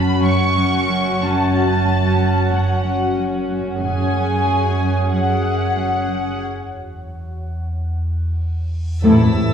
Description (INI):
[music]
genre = cinematic, suspense film score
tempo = 92 BPM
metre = 4/4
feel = straight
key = unclear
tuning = A4 = 442 Hz
[part]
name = dark studio violin section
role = melody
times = 0.0-6.4 s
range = F#5 to C#6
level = -22 LUFS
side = left 1 dB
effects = none
[part]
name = warm studio viola section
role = accompaniment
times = 0.0-9.5 s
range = C#4 to A4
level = -23 LUFS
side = left 2 dB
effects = none
[part]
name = shimmering ambient pad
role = sustained chords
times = 0.0-9.5 s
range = F#4 to B5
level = -27 LUFS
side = left 1 dB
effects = chorus, built-in reverb, phaser
[part]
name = warm studio cello section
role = riff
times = 0.0-9.5 s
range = F#2 to F#3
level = -23 LUFS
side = equal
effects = none
[part]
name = dark studio cello section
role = bass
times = 0.0-6.4 s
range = F#2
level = -20 LUFS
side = right 3 dB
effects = none
[part]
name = deep rumbling drone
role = drone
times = 0.6-9.5 s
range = F#1 to E2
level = -26 LUFS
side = equal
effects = built-in reverb
[part]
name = dark studio double bass section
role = bass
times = 3.8-4.4, 9.0-9.5 s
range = F#1 to A1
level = -21 LUFS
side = right 2 dB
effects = none
[part]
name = reverse cymbal and sub drop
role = sound effects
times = 9.0-9.5 s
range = none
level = -26 LUFS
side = left 1 dB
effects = none
[part]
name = clear trombone section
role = sustained chords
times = 9.0-9.5 s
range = A2 to E3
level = -25 LUFS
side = right 2 dB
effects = none
[part]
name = warm French horn section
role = sustained chords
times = 9.0-9.5 s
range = C3 to A3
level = -24 LUFS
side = left 2 dB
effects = none
[part]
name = timpani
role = percussion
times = 9.0-9.5 s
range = A2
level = -24 LUFS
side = left 2 dB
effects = none
[part]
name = warm studio violin section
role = texture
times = 9.0-9.5 s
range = E6 to B6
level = -30 LUFS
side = left 2 dB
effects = none
[sound]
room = wet scoring stage reverb, RT60 1.6 s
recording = heard from further back in the room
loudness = -16 LUFS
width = side -8 dB against mid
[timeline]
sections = 0.0-9.0 A section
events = break 6.4-9.0; reverse cymbal 8.8; band accent 9.0-9.5; impact 9.0-9.5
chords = 0.0 C#sus4/F#; 6.4 N.C.; 9.0 Amadd9